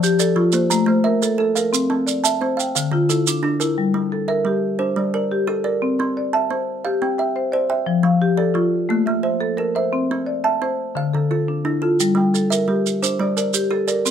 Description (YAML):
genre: southern african traditional, mbira-style interlocking cycle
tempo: 117 BPM (dotted quarters)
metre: 12/8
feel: straight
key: G dorian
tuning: A4 = 440 Hz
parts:
  - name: kalimba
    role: arpeggios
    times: 0.0-14.1 s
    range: D3 to Bb5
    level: -23 LUFS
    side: right 5 dB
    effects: none
  - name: marimba with medium mallets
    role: arpeggios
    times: 0.0-14.1 s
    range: D3 to C6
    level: -19 LUFS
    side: left 2 dB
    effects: none
  - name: maracas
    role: percussion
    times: 0.0-3.8, 12.0-14.1 s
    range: none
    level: -22 LUFS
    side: right 9 dB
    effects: none
room: light reverb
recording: close, detailed microphones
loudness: -17 LUFS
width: side -8 dB against mid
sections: 0.0-3.8 A section; 3.8-14.1 A section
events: none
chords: 0.0 F; 0.7 Am; 1.7 C; 2.7 Dm; 3.8 Gm; 5.8 C; 7.9 F; 8.9 Am; 9.9 C; 11.0 Dm; 12.0 Gm